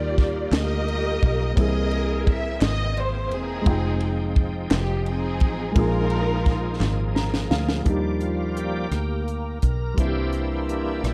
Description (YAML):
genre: slow gospel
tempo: 57 BPM (dotted quarters)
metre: 6/8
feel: straight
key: Eb major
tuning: A4 = 440 Hz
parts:
  - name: dark studio string section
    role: melody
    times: 0.0-7.1 s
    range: C4 to E5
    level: -30 LUFS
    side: equal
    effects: none
  - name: warm concert grand piano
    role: accompaniment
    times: 0.0-11.1 s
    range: Bb2 to Bb5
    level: -32 LUFS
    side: equal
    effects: none
  - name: bright tonewheel organ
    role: sustained chords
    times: 0.0-11.1 s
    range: D#3 to G5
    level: -33 LUFS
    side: equal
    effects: slow rotary speaker, overdrive, chorus vibrato
  - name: fingered electric bass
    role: bass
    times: 0.0-11.1 s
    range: E1 to Eb2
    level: -28 LUFS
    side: equal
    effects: none
  - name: tight funk drum kit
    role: drums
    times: 0.2-11.1 s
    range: hi-hat, kick drum, ride cymbal, rim click, snare drum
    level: -24 LUFS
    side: equal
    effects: none
  - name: group handclap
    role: percussion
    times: 0.5-7.1 s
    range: none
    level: -41 LUFS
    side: equal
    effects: none
  - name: warm studio string section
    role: sustained chords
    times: 7.9-11.1 s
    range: G5 to E6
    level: -45 LUFS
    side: equal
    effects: none
room: light reverb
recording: dark, warm production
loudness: -24 LUFS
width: mono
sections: 0.0-7.9 A section; 7.9-11.1 B section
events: drum fill 6.8-7.9; grand piano fill 6.8-7.9; tonewheel organ solo 7.9-11.1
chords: 0.0 Ebmaj9; 1.6 C7alt; 3.7 Fm9; 5.8 Bb7sus4; 7.9 Ebmaj7; 10.0 C7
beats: 0.53 | 1.57 2.62 | 3.66 4.71 | 5.76 6.81 | 7.86 8.92 | 9.98 11.04